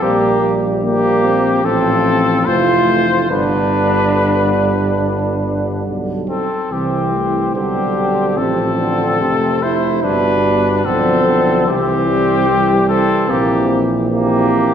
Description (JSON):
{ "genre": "classical, brass quintet", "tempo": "72 BPM", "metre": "4/4", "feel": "rubato", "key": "C major", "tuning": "A4 = 441 Hz", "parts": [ { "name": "warm trumpet", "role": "melody", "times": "0.0-14.7 s", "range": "G4 to C5", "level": "-18 LUFS", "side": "left 4 dB", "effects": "none" }, { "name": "warm flugelhorn", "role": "second line", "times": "0.0-14.7 s", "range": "Bb3 to F4", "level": "-19 LUFS", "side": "right 3 dB", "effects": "none" }, { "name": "mellow French horn", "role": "accompaniment", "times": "0.0-14.7 s", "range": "E3 to C4", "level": "-22 LUFS", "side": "left 2 dB", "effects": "none" }, { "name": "warm euphonium", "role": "accompaniment", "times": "0.0-14.7 s", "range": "B2 to G3", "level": "-21 LUFS", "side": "right 1 dB", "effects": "none" }, { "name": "mellow tuba", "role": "bass", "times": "0.0-14.7 s", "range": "F1 to C2", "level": "-20 LUFS", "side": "right 1 dB", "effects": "none" } ], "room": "wet scoring stage reverb, RT60 1.6 s", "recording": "recorded in a church or concert hall", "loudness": "-13 LUFS", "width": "side -8 dB against mid", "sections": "0.0-14.7 A section", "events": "none", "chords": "0.0 C5/Bb; 1.7 F/A; 3.3 G; 6.7 C; 8.4 F/A; 10.0 G; 11.7 C; 13.3 C7/Bb", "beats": "| 0.03 0.84 1.65 2.47 | 3.31 4.17 5.02 5.87 | 6.71 7.55 8.38 9.21 | 10.04 10.86 11.68 12.49 | 13.30 14.12" }